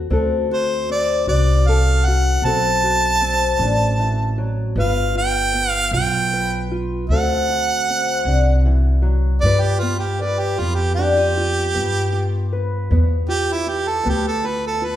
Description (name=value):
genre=acoustic country blues, solo or duo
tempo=52 BPM (dotted quarters)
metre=12/8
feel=straight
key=unclear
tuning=A4 = 440 Hz
part: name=fingerpicked old ladder-braced acoustic guitar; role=accompaniment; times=0.0-15.0 s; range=G2 to B4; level=-24 LUFS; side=left 4 dB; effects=none
part: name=upright bass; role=bass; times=0.0-15.0 s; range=G1 to G2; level=-20 LUFS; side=equal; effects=none
part: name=clear harmonica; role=melody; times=0.5-15.0 s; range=E4 to A5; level=-20 LUFS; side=right 2 dB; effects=none
room=wet large studio reverb, RT60 1.5 s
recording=band playing live in one room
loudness=-16 LUFS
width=side -12 dB against mid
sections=0.0-9.4 A section; 9.4-15.0 B section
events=harmonica solo 9.4-15.0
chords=0.0 D7; 4.8 G7; 7.1 D7; 9.4 G7